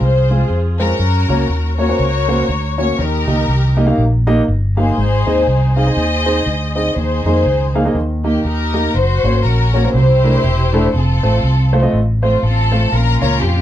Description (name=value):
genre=uptempo gospel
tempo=121 BPM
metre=4/4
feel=swing 59% on 8ths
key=unclear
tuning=A4 = 438 Hz
part: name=warm studio string section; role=melody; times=0.0-13.6 s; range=C4 to Eb5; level=-19 LUFS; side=left 2 dB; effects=none
part: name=warm grand piano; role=accompaniment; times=0.0-13.6 s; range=Ab2 to F5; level=-18 LUFS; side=right 1 dB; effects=none
part: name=fingered electric bass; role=bass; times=0.0-13.6 s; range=E1 to Gb2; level=-15 LUFS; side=equal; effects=none
room=moderate studio reverb, RT60 0.5 s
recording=band playing live in one room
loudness=-12 LUFS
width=side -12 dB against mid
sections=0.0-13.6 A section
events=none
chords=0.0 Fm; 1.0 Gb; 3.0 Eb; 5.0 Ab; 7.0 Ebsus4; 8.0 Eb; 8.9 Gb; 9.9 C13; 10.9 F; 12.9 Bbm